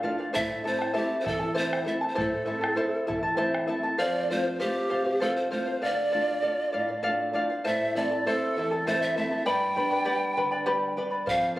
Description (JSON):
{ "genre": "andean folk, Andean ensemble", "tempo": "66 BPM (dotted quarters)", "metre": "6/8", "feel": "straight", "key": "A minor", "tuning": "A4 = 440 Hz", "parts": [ { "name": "breathy pan flute", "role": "melody", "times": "0.0-11.6 s", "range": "G4 to G5", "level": "-29 LUFS", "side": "right 1 dB", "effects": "none" }, { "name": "charango", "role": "accompaniment", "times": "0.0-11.6 s", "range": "E4 to B5", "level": "-27 LUFS", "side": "left 1 dB", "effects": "none" }, { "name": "flamenco guitar", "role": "accompaniment", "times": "0.0-11.6 s", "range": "E2 to F4", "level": "-33 LUFS", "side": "equal", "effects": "none" }, { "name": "bombo", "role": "percussion", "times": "0.2-3.7, 11.3-11.5 s", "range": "none", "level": "-38 LUFS", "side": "equal", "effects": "none" } ], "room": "moderate recital hall reverb, RT60 1.5 s", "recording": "recorded on a phone in the room, club reverb", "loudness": "-25 LUFS", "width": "side -16 dB against mid", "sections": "0.0-4.0 A section; 4.0-11.6 A section", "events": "none", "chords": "0.3 Am; 4.0 F; 5.8 Dm; 7.6 Am; 9.5 G" }